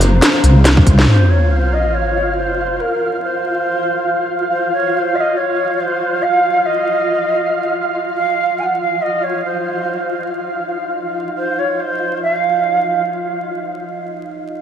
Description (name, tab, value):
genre	deep dubstep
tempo	140 BPM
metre	4/4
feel	swing 56% on 16ths, half-time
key	unclear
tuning	A4 = 440 Hz
part	deep dark ambient pad	sustained chords	0.0-14.6 s	F4 to Bb5	-30 LUFS	equal	chorus, built-in reverb
part	wobble bass	bass	0.0-1.1 s	Gb1 to C2	-10 LUFS	equal	chorus
part	garage drum kit	drums	0.0-1.1 s	hi-hat, snare drum	-15 LUFS	equal	none
part	flickering grainy texture	texture	0.0-13.1 s	C4 to F5	-20 LUFS	right 1 dB	built-in reverb
part	electronic kick drum	drums	0.8-1.0 s	none	-12 LUFS	equal	none
part	low ney	melody	1.1-13.0 s	Bb4 to Ab5	-18 LUFS	right 1 dB	dub echo
part	sub drop	sound effects	1.1-2.8 s	none	-15 LUFS	equal	none
room	moderate huge ambient reverb, RT60 7.1 s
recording	vinyl crackle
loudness	-14 LUFS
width	side -9 dB against mid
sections	0.0-1.1 A section; 1.1-14.6 B section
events	drum fill 0.7-1.1; impact 1.1-2.8; break 13.1-14.6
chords	0.0 F5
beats	0.22 0.65 | 1.08 1.51 1.94 2.37 | 2.79 3.22 3.65 4.08 | 4.51 4.94 5.37 5.79 | 6.22 6.65 7.08 7.51 | 7.94 8.37 8.79 9.22 | 9.65 10.08 10.51 10.94 | 11.37 11.79 12.22 12.65 | 13.08 13.51 13.94 14.37